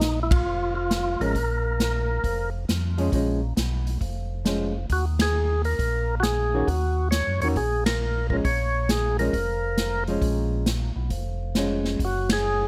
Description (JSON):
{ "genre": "soul jazz organ trio", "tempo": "135 BPM", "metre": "4/4", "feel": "swing 67% on 8ths", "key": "Bb minor", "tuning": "A4 = 440 Hz", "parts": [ { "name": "percussive tonewheel organ", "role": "melody", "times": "0.0-12.7 s", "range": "Eb4 to Db5", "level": "-28 LUFS", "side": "equal", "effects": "slow rotary speaker" }, { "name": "tonewheel organ", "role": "bass", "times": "0.0-12.7 s", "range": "F1 to Gb2", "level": "-29 LUFS", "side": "equal", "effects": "slow rotary speaker" }, { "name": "swinging big-band drum kit", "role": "drums", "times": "0.0-12.4 s", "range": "hi-hat, kick drum, ride cymbal, snare drum", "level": "-30 LUFS", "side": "equal", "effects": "none" }, { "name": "hollow-body jazz guitar", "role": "accompaniment", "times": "1.2-12.0 s", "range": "Eb3 to Gb4", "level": "-29 LUFS", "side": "equal", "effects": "none" } ], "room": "little or no reverb", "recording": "close, detailed microphones", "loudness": "-25 LUFS", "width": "mono", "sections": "0.0-12.7 A section", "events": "band accent 0.2, 5.1, 7.8, 12.2", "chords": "0.0 Bbm7; 4.9 Ebm7; 8.4 Bbm7; 12.0 N.C." }